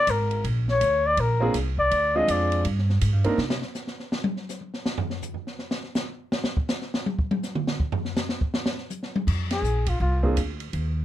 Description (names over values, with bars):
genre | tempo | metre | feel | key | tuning
jazz, small-group swing and bop | 163 BPM | 4/4 | swing 63% on 8ths | Bb mixolydian | A4 = 441 Hz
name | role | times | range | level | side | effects
breathy flugelhorn | melody | 0.0-2.7, 9.5-10.2 s | F4 to Eb5 | -22 LUFS | left 2 dB | none
upright bass | bass | 0.1-3.6, 9.3-11.0 s | Ab1 to C3 | -24 LUFS | equal | none
open jazz drum kit | drums | 0.1-10.8 s | crash cymbal, hi-hat, kick drum, ride cymbal, snare drum, toms | -28 LUFS | equal | none
warm grand piano | accompaniment | 1.4-3.4, 10.2-10.4 s | Ab3 to Bb4 | -26 LUFS | right 3 dB | none
room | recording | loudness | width
light reverb | close, detailed microphones | -23 LUFS | side -13 dB against mid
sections
0.0-9.3 A section; 9.3-11.0 B section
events
flugelhorn solo 0.0-9.3; drum solo 3.4-9.3; band accent 9.4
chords
0.0 Bb9; 1.9 Dm7b5; 2.6 G5; 3.4 N.C.; 9.3 Bb9